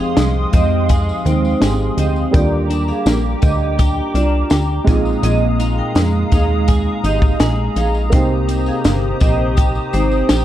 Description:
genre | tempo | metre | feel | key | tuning
indie pop, bedroom pop | 83 BPM | 4/4 | straight | Eb major | A4 = 440 Hz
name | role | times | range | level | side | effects
vibraphone with hard mallets | second line | 0.0-10.3 s | Eb4 to G5 | -23 LUFS | right 4 dB | analog chorus, analog delay
dark upright piano | accompaniment | 0.0-10.4 s | D3 to G4 | -24 LUFS | right 3 dB | cassette tape
semi-hollow electric guitar | accompaniment | 0.0-10.4 s | F2 to Ab4 | -23 LUFS | left 3 dB | analog chorus, vibrato effect
hollow soft pad | sustained chords | 0.0-10.4 s | Ab3 to Eb6 | -24 LUFS | equal | ensemble chorus
plucky analog bass | bass | 0.0-10.4 s | G1 to F2 | -18 LUFS | equal | none
compact cocktail drum kit | drums | 0.2-10.4 s | hi-hat, kick drum, snare drum | -16 LUFS | equal | none
tambourine | percussion | 0.2-10.4 s | none | -38 LUFS | left 5 dB | none
room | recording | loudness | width
small room ambience | dark, warm production | -13 LUFS | side -12 dB against mid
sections
0.0-10.4 A section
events
none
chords
0.0 Fm7; 2.3 Ebmaj7; 4.9 Bb7sus4; 8.1 Cm7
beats
0.17 0.90 1.62 | 2.34 3.07 3.79 4.51 | 5.24 5.96 6.68 7.40 | 8.13 8.85 9.57 10.30

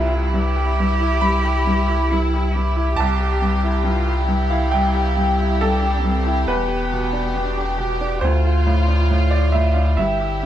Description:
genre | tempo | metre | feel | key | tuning
neoclassical piano and strings | 68 BPM | 4/4 | rubato | unclear | A4 = 439 Hz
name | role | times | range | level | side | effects
warm chamber violin section | melody | 0.0-10.5 s | E4 to G4 | -26 LUFS | left 2 dB | none
warm cello | second line | 0.0-10.5 s | B3 to G4 | -27 LUFS | right 4 dB | none
bright upright piano | accompaniment | 0.0-10.5 s | C2 to B5 | -22 LUFS | right 1 dB | none
warm sub bass | bass | 0.0-10.5 s | E1 to D2 | -20 LUFS | left 1 dB | none
room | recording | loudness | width
moderate studio ambience, RT60 0.5 s | band playing live in one room | -17 LUFS | side -11 dB against mid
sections
0.0-10.5 A section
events
none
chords
0.0 Cmaj7; 6.5 Em7; 8.2 Dm7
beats
0.32 1.22 2.10 | 2.97 3.84 4.71 5.59 | 6.47 7.35 8.22 9.09 | 9.97

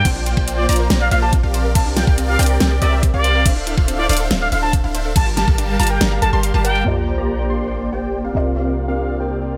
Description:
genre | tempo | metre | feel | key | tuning
future bass | 141 BPM | 4/4 | half-time | unclear | A4 = 444 Hz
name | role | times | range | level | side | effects
trumpet with plunger mute | melody | 0.0-6.9 s | D5 to A5 | -25 LUFS | equal | sidechain pumping, dub echo
unison pluck | arpeggios | 0.0-6.8 s | E5 to C6 | -34 LUFS | equal | none
big bright polysynth | riff | 0.0-9.6 s | G3 to C6 | -25 LUFS | equal | sidechain pumping
warm 808-style bass | bass | 0.0-9.6 s | D1 to C2 | -22 LUFS | equal | sidechain pumping
unison pluck | arpeggios | 0.1-6.8 s | C4 to F5 | -32 LUFS | equal | phaser, sidechain pumping, dub echo
dubstep drum kit | drums | 0.1-6.7 s | crash cymbal, hi-hat, snare drum | -25 LUFS | equal | none
electronic kick drum | drums | 0.1-5.6 s | none | -19 LUFS | equal | none
felt-muted upright piano | accompaniment | 6.8-9.6 s | C3 to D5 | -29 LUFS | equal | sidechain pumping, dub echo
airy breathy pad | sustained chords | 7.4-9.6 s | C3 to G4 | -32 LUFS | equal | chorus, phaser, sidechain pumping
sub drop | sound effects | 6.9-8.6 s | none | -28 LUFS | equal | none
room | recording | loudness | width
light reverb, digital ambience | none | -17 LUFS | mono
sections
0.0-6.9 A section; 6.9-9.6 B section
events
drop 0.0-6.9; kick drops out 6.0-6.9; impact 6.9-8.6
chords
0.1 Bb69; 1.5 C9sus4; 3.5 Dm9; 5.2 Gm9; 6.9 Bb69; 8.3 C9sus4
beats
| 0.05 0.48 0.90 1.33 | 1.75 2.18 2.60 3.03 | 3.46 3.88 4.31 4.73 | 5.16 5.58 6.01 6.43 | 6.86 7.29 7.71 8.14 | 8.56 8.99 9.41

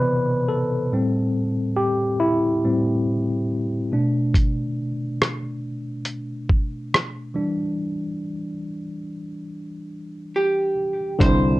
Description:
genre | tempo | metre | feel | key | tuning
lo-fi hip hop | 70 BPM | 4/4 | swing 64% on 16ths | E minor | A4 = 440 Hz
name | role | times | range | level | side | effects
mellow tine electric piano | accompaniment | 0.0-11.6 s | A2 to D5 | -22 LUFS | equal | medium stereo tremolo
lo-fi sampler-style drum kit | drums | 4.3-11.5 s | hi-hat, kick drum, rim click | -19 LUFS | equal | none
vintage hollow-body jazz guitar | melody | 10.4-11.6 s | G4 to C5 | -21 LUFS | right 1 dB | none
vintage muted fingered electric bass | bass | 11.2-11.6 s | C2 | -22 LUFS | equal | none
room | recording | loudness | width
moderate studio reverb, RT60 0.5 s | worn, warbling old tape, cassette tape, warbly pitch drift | -21 LUFS | side -18 dB against mid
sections
0.0-11.2 A section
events
tine electric piano solo 0.0-11.2; break 7.8-11.2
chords
0.0 Cmaj7; 0.9 Am7; 3.9 Bm7; 7.3 Em7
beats
0.06 | 0.92 1.78 2.63 3.49 | 4.35 5.21 6.06 6.92 | 7.78 8.63 9.49 10.35 | 11.21

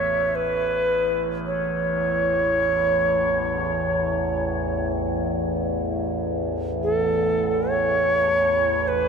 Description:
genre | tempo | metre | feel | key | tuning
world meditative, free-time meditation music | free time | none | none | A major pentatonic | A4 = 442 Hz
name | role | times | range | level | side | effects
bright Native American-style cedar flute | melody | 0.0-9.1 s | A4 to C#5 | -22 LUFS | equal | tape echo
overtone-sweeping drone | drone | 0.0-9.1 s | A1 to E2 | -26 LUFS | equal | chorus, built-in reverb
room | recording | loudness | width
wet cathedral reverb, RT60 5.8 s | none | -20 LUFS | side -6 dB against mid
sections
0.0-9.1 A section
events
none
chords
none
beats
free time

